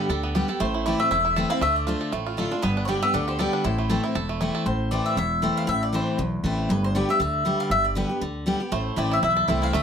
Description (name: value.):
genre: bluegrass.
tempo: 236 BPM.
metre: 4/4.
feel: swing 55% on 8ths.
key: A minor.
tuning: A4 = 440 Hz.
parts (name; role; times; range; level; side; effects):
bluegrass banjo; melody; 0.0-4.7, 8.7-9.8 s; A3 to A4; -29 LUFS; right 6 dB; none.
mandolin; melody; 0.0-9.8 s; B4 to F5; -25 LUFS; left 2 dB; none.
picked steel-string acoustic guitar; accompaniment; 0.0-9.8 s; E2 to G4; -25 LUFS; left 1 dB; none.
upright bass; bass; 0.1-9.8 s; E1 to D2; -29 LUFS; equal; none.
room: light reverb.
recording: none.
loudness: -21 LUFS.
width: side -7 dB against mid.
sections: 0.0-4.7 A section; 4.7-9.8 A section.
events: none.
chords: 0.0 G; 0.6 Am; 1.6 Dm; 2.6 G; 3.6 Am; 6.7 G; 8.7 Am.